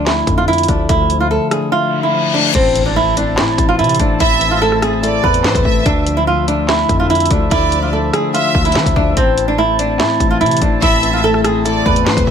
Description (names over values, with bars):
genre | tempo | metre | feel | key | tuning
hip hop, drill | 145 BPM | 4/4 | half-time | A minor | A4 = 440 Hz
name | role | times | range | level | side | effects
flamenco guitar | melody | 0.0-12.3 s | C4 to B4 | -15 LUFS | right 3 dB | ping-pong delay
mellow tine electric piano | accompaniment | 0.0-12.3 s | A2 to E5 | -19 LUFS | left 7 dB | phaser
hard-hitting 808-style bass | bass | 0.0-12.3 s | A1 to F3 | -20 LUFS | equal | none
drill drum kit | drums | 0.1-12.3 s | crash cymbal, handclaps, hi-hat, kick drum, rim click, snare drum | -18 LUFS | equal | none
reverse cymbal and impact | sound effects | 1.9-4.2 s | none | -21 LUFS | left 4 dB | none
warm woodwind section | sustained chords | 2.5-12.3 s | F3 to A5 | -25 LUFS | equal | none
clear studio violin section | second line | 4.2-12.3 s | C5 to E5 | -20 LUFS | equal | ping-pong delay
room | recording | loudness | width
light reverb | none | -12 LUFS | side -8 dB against mid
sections
0.0-2.5 A section; 2.5-12.3 B section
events
reverse cymbal 1.9-2.5; impact 2.5-4.2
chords
0.0 Dmadd9; 2.5 Am; 5.9 Dmadd9; 9.2 Am